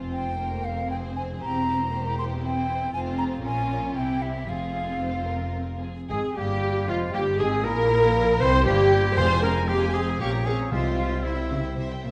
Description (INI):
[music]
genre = quick classical-period movement for symphony orchestra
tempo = 116 BPM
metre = 3/4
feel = rubato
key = F minor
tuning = A4 = 439 Hz
[part]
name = rich chamber violin section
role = melody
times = 0.0-12.1 s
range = F4 to Db6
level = -40 LUFS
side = equal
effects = none
[part]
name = rich studio violin section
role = second line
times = 0.0-12.1 s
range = E4 to Ab5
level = -40 LUFS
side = equal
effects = none
[part]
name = warm studio viola section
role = accompaniment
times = 0.0-11.8 s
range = Bb3 to C5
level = -30 LUFS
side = equal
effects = none
[part]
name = clear studio cello section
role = bass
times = 0.0-12.1 s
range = E2 to Db3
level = -34 LUFS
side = equal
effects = none
[part]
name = clear studio double bass section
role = bass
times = 0.0-12.1 s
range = E1 to C2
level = -32 LUFS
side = equal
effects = none
[part]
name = bright silver concert flute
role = second line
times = 0.1-11.8 s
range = E5 to C6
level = -33 LUFS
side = equal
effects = none
[part]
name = clear clarinet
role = second line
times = 6.1-11.8 s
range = G3 to F4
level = -36 LUFS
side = equal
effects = none
[part]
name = warm oboe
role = second line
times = 6.1-11.8 s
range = E4 to C5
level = -34 LUFS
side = equal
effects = none
[part]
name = mellow French horn section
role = sustained chords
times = 6.1-12.0 s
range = F3 to Db4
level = -32 LUFS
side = equal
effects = none
[part]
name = timpani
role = percussion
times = 9.2-11.5 s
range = F2 to C3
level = -33 LUFS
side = equal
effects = none
[sound]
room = wet recital hall reverb, RT60 1.7 s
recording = none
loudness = -25 LUFS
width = mono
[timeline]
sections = 0.0-6.1 A section; 6.1-12.1 B section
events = none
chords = 0.0 Fm; 1.4 C7/E; 2.9 F5; 3.4 Bbm; 4.0 C; 4.5 Fm; 7.7 C7/Bb; 9.2 Fm; 10.2 Bbm; 10.7 C